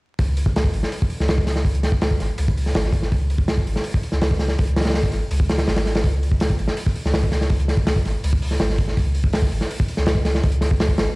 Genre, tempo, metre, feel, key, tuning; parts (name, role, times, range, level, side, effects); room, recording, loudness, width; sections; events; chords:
drum and bass, jungle; 164 BPM; 4/4; straight; A4 = 440 Hz
soft dub sub bass; bass; 0.2-11.1 s; G#1 to C#2; -22 LUFS; equal; tube saturation
crunchy breakbeat drum kit; drums; 0.2-11.1 s; hi-hat, kick drum, snare drum; -20 LUFS; equal
light reverb; played on a big sound system in a bare room, stone room reverb, vinyl crackle; -18 LUFS; side -24 dB against mid
0.2-11.2 A section